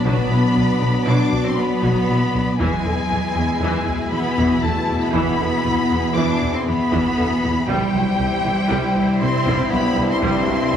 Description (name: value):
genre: cinematic, hybrid orchestral and electronic film score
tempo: 118 BPM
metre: 5/4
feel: straight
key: unclear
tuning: A4 = 440 Hz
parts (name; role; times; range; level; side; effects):
- warm symphonic violin section; melody; 0.0-10.8 s; G5 to D6; -25 LUFS; left 2 dB; none
- warm symphonic violin section; second line; 0.0-10.8 s; G4 to D5; -30 LUFS; left 3 dB; none
- clear symphonic viola section; accompaniment; 0.0-10.8 s; D3 to E4; -26 LUFS; right 1 dB; none
- dark trombone section; sustained chords; 0.0-10.8 s; G2 to G3; -28 LUFS; right 2 dB; none
- ethereal airy pad; sustained chords; 0.0-10.8 s; C3 to E5; -28 LUFS; right 1 dB; ensemble chorus, built-in reverb
- mellow French horn section; sustained chords; 0.0-10.8 s; C3 to E4; -28 LUFS; left 4 dB; none
- rich symphonic cello section; bass; 0.0-10.8 s; G3 to D4; -23 LUFS; equal; none
- rubbery square bass; riff; 0.1-10.8 s; C2 to B3; -25 LUFS; left 2 dB; none
- warm studio double bass section; bass; 0.1-10.8 s; B1 to E2; -27 LUFS; right 2 dB; none
- taiko ensemble; drums; 0.1-10.8 s; none; -32 LUFS; equal; none
room: wet scoring stage reverb, RT60 1.5 s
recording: small room reverb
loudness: -16 LUFS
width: side -9 dB against mid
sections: 0.0-10.8 A section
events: none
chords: 0.0 Bm; 2.6 E; 7.7 C